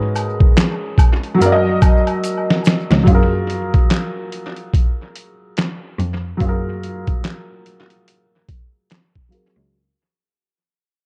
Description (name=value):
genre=lo-fi hip hop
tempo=72 BPM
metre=4/4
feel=swing 59% on 16ths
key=F# major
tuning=A4 = 440 Hz
part: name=felt-muted upright piano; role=accompaniment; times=0.0-9.8 s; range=F#3 to D#5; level=-22 LUFS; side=equal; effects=low-pass filter
part: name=clear cello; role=bass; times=0.0-9.7 s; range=C#2 to G#2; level=-23 LUFS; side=equal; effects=none
part: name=boom bap sampler-style drum kit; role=drums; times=0.2-9.5 s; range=handclaps, hi-hat, kick drum, snare drum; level=-17 LUFS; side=equal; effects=none
part: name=tube shaker and woodblock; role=percussion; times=0.2-2.9 s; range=none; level=-31 LUFS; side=equal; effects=tape echo
room=light reverb, small room ambience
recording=echo-heavy mix, cassette tape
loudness=-17 LUFS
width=mono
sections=0.0-3.1 A section; 3.1-9.7 B section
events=drum fill 2.2-3.1; fade-out 3.1-9.7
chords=0.0 G#m9; 1.4 F#6; 3.1 F#maj9